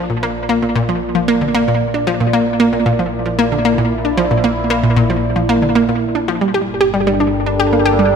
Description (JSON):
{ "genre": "ambient, sequencer-driven space music", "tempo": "114 BPM", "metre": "4/4", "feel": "straight", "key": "unclear", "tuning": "A4 = 440 Hz", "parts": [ { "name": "sweeping resonant pad", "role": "sustained chords", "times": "0.0-8.2 s", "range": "Bb2 to D5", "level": "-19 LUFS", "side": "right 1 dB", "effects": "chorus, phaser" }, { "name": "analog pluck", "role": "riff", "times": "0.0-8.1 s", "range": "Bb2 to G4", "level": "-14 LUFS", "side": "equal", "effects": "chorus, analog delay" }, { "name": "fat analog bass", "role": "bass", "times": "0.0-8.2 s", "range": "G1 to Bb1", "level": "-26 LUFS", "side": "equal", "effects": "none" } ], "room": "wet concert hall reverb, RT60 2.3 s", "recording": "none", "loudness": "-13 LUFS", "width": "side -6 dB against mid", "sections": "0.0-8.2 A section", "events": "fade-in on analog synth pad 0.0-8.2; fade-in on analog synth bass 0.0-8.2", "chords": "0.0 Bb; 6.4 Gm" }